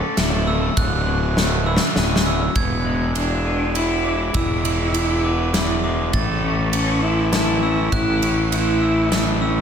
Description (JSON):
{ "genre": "post-rock", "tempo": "101 BPM", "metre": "3/4", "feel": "straight", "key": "unclear", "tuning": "A4 = 439 Hz", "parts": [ { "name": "electric guitar through a small old amp", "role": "arpeggios", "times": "0.0-9.6 s", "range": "E2 to A4", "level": "-26 LUFS", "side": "left 4 dB", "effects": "spring reverb, slapback echo, tape echo" }, { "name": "fuzz fingered electric bass", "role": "bass", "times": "0.2-9.6 s", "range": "D1 to A1", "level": "-22 LUFS", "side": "equal", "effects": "overdrive" }, { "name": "big rock drum kit", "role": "drums", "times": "0.2-9.3 s", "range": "kick drum, ride cymbal, snare drum", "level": "-23 LUFS", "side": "equal", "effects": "none" }, { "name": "glockenspiel with hard plastic mallets", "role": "arpeggios", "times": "0.5-9.6 s", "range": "D6 to A6", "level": "-28 LUFS", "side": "right 4 dB", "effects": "slapback echo, tape echo" }, { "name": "clear cello", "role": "melody", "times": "2.6-9.4 s", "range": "A3 to E4", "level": "-22 LUFS", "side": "right 1 dB", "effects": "slapback echo, tape echo" } ], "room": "moderate lush hall reverb, RT60 2.5 s", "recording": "big arena sound", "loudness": "-17 LUFS", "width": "side -7 dB against mid", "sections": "0.0-2.6 A section; 2.6-9.6 B section", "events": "drum fill 1.4-2.6", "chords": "0.0 A/D; 0.8 F#m7/D; 2.6 E7; 6.1 A" }